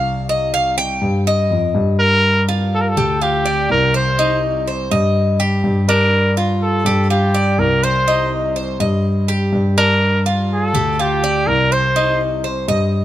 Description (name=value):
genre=latin, Cuban son and guajira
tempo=124 BPM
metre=4/4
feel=straight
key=G minor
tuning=A4 = 441 Hz
part: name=Cuban tres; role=arpeggios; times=0.0-13.0 s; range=D4 to G5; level=-20 LUFS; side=equal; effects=none
part: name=dark concert grand piano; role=bass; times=0.0-13.0 s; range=C2 to G2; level=-18 LUFS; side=left 1 dB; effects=none
part: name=warm trumpet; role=melody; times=2.0-12.2 s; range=G4 to C5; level=-17 LUFS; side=right 1 dB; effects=none
room=light reverb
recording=none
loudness=-14 LUFS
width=side -13 dB against mid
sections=0.0-2.2 A section; 2.2-13.0 B section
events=Cuban tres solo 0.0-2.2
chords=0.3 Cm; 2.2 G5; 4.2 Cm; 6.1 G5; 8.1 Cm; 10.0 G5; 12.0 Cm